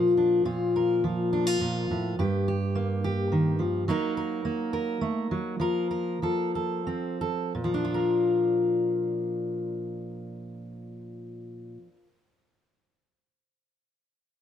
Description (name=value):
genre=folk, solo fingerstyle acoustic guitar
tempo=86-107 BPM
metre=3/4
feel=rubato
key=Bb major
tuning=A4 = 442 Hz
part: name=fingerpicked steel-string acoustic guitar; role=solo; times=0.0-12.2 s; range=G2 to Bb4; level=-25 LUFS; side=left 1 dB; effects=none
room=light reverb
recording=none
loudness=-25 LUFS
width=side -9 dB against mid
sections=0.5-7.6 A section; 7.6-11.6 B section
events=slowing down 3.9-7.6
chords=0.5 Bb5; 2.2 Gm; 3.9 Ebm/Gb; 5.6 Fsus4; 6.2 F; 7.6 Bb